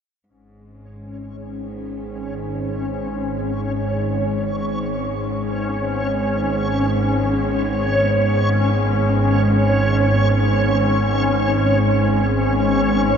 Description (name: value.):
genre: dark ambient drone.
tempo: free time.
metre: none.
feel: none.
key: unclear.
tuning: A4 = 439 Hz.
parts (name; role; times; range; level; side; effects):
muted studio cello section; sustained chords; 0.3-13.2 s; G#2 to B3; -28 LUFS; equal; shimmer reverb.
organ-like drone; drone; 0.9-13.2 s; G#1 to G#2; -20 LUFS; right 1 dB; ensemble chorus, built-in reverb.
backwards swelling texture; texture; 1.1-13.2 s; C#4 to C#5; -21 LUFS; left 1 dB; built-in reverb, shimmer reverb.
room: wet huge ambient reverb, RT60 8.9 s.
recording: nothing above 7.5 kHz.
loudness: -17 LUFS.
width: side -7 dB against mid.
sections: 0.3-13.2 A section.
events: fade-in on cello section 0.3-13.2.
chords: 0.3 G#m.